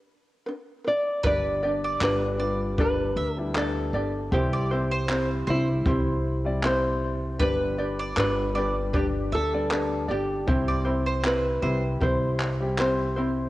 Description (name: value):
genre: acoustic pop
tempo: 78 BPM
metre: 4/4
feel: swing 55% on 16ths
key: unclear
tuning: A4 = 440 Hz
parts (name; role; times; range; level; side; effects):
- nylon-string guitar; melody; 0.0-13.5 s; E4 to D5; -28 LUFS; equal; cassette tape, tape echo
- ukulele; accompaniment; 0.0-13.5 s; C4 to D5; -29 LUFS; left 1 dB; none
- warm upright piano; accompaniment; 1.2-13.5 s; G3 to D5; -35 LUFS; left 2 dB; none
- bowl-back mandolin; arpeggios; 1.2-11.8 s; B4 to E5; -33 LUFS; right 2 dB; none
- upright bass; bass; 1.2-13.5 s; G1 to D2; -29 LUFS; equal; none
- jazz brush drum kit; drums; 1.2-13.0 s; handclaps, kick drum; -30 LUFS; equal; cassette tape
room: light reverb, small room ambience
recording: home recording on cassette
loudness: -23 LUFS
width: side -17 dB against mid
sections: 0.0-1.2 A section; 1.2-13.5 B section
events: break 0.0-1.2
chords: 0.0 G (rootless); 1.2 G; 4.3 C; 7.4 G; 10.5 C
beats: 0.47 | 1.24 2.01 2.78 3.55 | 4.32 5.09 5.86 6.63 | 7.40 8.17 8.94 9.71 | 10.47 11.24 12.01 12.78